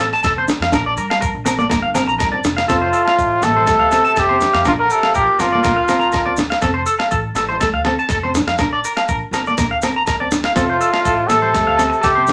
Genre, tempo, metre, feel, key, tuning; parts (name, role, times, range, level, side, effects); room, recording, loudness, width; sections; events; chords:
highlife guitar band; 122 BPM; 4/4; straight; F major; A4 = 440 Hz
nylon-string guitar; accompaniment; 0.0-12.3 s; A3 to D4; -24 LUFS; equal
electric guitar at the edge of break-up; arpeggios; 0.0-12.2 s; A4 to Bb5; -21 LUFS; equal
upright bass; bass; 0.0-12.3 s; F1 to G2; -30 LUFS; equal
breakbeat sampler-style drum kit; drums; 0.1-12.3 s; kick drum, snare drum; -26 LUFS; equal
agogo bells; percussion; 0.2-12.2 s; -30 LUFS; equal
maracas; percussion; 0.2-12.3 s; -34 LUFS; equal
warm trumpet; melody; 2.7-6.4, 10.6-12.3 s; F4 to Bb4; -17 LUFS; equal
breathy tenor saxophone; second line; 2.7-6.4, 10.6-12.3 s; A2 to D3; -30 LUFS; equal
moderate studio reverb, RT60 0.6 s; -16 LUFS; mono
0.0-2.7 A section; 2.7-12.3 B section
0.0 F; 0.7 Bb; 2.7 F; 4.7 Bb; 6.6 F; 8.6 Bb; 10.6 F